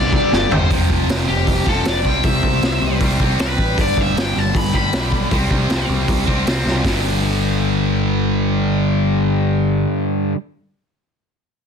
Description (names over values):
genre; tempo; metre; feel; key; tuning
punk rock; 156 BPM; 4/4; straight; G mixolydian; A4 = 440 Hz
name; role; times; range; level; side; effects
crunchy overdriven guitar; melody; 0.0-5.9 s; G4 to B5; -22 LUFS; left 2 dB; none
distorted electric guitar; riff; 0.0-10.4 s; F2 to C4; -19 LUFS; left 1 dB; overdrive
growling picked electric bass; bass; 0.0-9.8 s; F1 to C2; -21 LUFS; equal; overdrive
raw garage drum kit; drums; 0.1-6.9 s; hi-hat, kick drum, snare drum, toms; -20 LUFS; equal; none
room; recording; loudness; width
little or no reverb; dense, heavily limited modern master; -15 LUFS; side -7 dB against mid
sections
0.7-6.8 A section; 6.8-9.9 B section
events
drum fill 0.3-0.7, 6.7; overdriven electric guitar solo 0.7-6.8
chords
0.0 G5; 0.7 F5; 2.0 C; 3.8 G; 5.3 C5; 6.8 G5